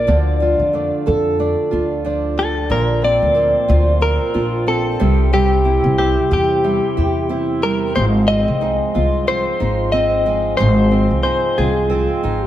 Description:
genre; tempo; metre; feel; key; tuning
acoustic pop; 91 BPM; 4/4; swing 55% on 16ths; unclear; A4 = 440 Hz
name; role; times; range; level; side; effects
direct-recorded clean electric guitar; melody; 0.0-12.5 s; G4 to Eb5; -18 LUFS; left 2 dB; vibrato effect
fingerpicked twelve-string acoustic guitar; accompaniment; 0.0-12.5 s; Ab2 to Bb4; -22 LUFS; right 2 dB; none
nylon-string guitar; arpeggios; 0.0-12.5 s; F3 to E4; -25 LUFS; right 4 dB; none
upright bass; bass; 0.0-12.5 s; Ab1 to F2; -18 LUFS; equal; none
chamber organ, stopped flute; sustained chords; 2.7-12.5 s; Bb3 to C6; -30 LUFS; equal; none
room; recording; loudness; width
wet plate reverb, RT60 2.6 s; heard from further back in the room; -14 LUFS; side -12 dB against mid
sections
0.0-2.7 A section; 2.7-12.5 B section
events
none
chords
0.1 Dm; 2.7 Bbadd9; 5.0 C; 8.0 Ab6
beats
| 0.08 0.73 1.39 2.05 | 2.71 3.37 4.02 4.68 | 5.34 5.99 6.65 7.31 | 7.96 8.62 9.28 9.94 | 10.59 11.25 11.91

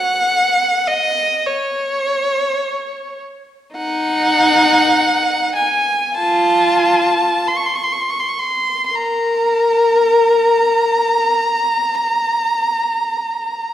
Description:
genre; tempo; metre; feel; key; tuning
classical, free, expressive piece for unaccompanied violin; 37-54 BPM; 4/4; rubato; Bb minor; A4 = 439 Hz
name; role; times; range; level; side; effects
rich violin; solo; 0.0-13.7 s; Eb4 to Db6; -14 LUFS; equal; none
room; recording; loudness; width
wet recital hall reverb, RT60 1.8 s; heard from further back in the room; -14 LUFS; side -11 dB against mid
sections
0.0-13.7 A section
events
none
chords
none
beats
0.29 1.47 2.63 | 3.77 4.96 6.18 7.48 | 8.96 10.56 12.13 13.61

